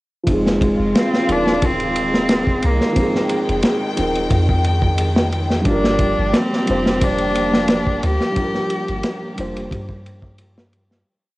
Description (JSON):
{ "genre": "trip hop", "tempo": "89 BPM", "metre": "4/4", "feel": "straight", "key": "G phrygian", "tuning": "A4 = 437 Hz", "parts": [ { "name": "felt-muted upright piano", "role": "accompaniment", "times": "0.2-11.1 s", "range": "F3 to C5", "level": "-23 LUFS", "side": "equal", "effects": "harmonic tremolo, low-pass filter, cassette tape, tape echo" }, { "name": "rich cello", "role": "melody", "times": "0.3-9.4 s", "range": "Ab3 to G4", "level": "-21 LUFS", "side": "equal", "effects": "cassette tape, dub echo" }, { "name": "rich studio string section", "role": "sustained chords", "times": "0.3-11.0 s", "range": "Eb3 to G5", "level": "-24 LUFS", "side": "left 1 dB", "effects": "cassette tape" }, { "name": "soft 808-style bass", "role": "bass", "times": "0.3-11.0 s", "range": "Eb1 to G2", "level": "-22 LUFS", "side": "equal", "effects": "tube saturation" }, { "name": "crunchy breakbeat drum kit", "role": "drums", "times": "0.3-11.1 s", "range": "kick drum, ride cymbal, snare drum", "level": "-20 LUFS", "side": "equal", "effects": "cassette tape" } ], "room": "light reverb", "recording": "home recording on cassette", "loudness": "-15 LUFS", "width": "side -19 dB against mid", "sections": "0.3-11.1 groove", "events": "filter sweep on felt piano 0.3-11.1; fade-out 7.5-11.1", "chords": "0.3 Fm7; 5.7 Gm7" }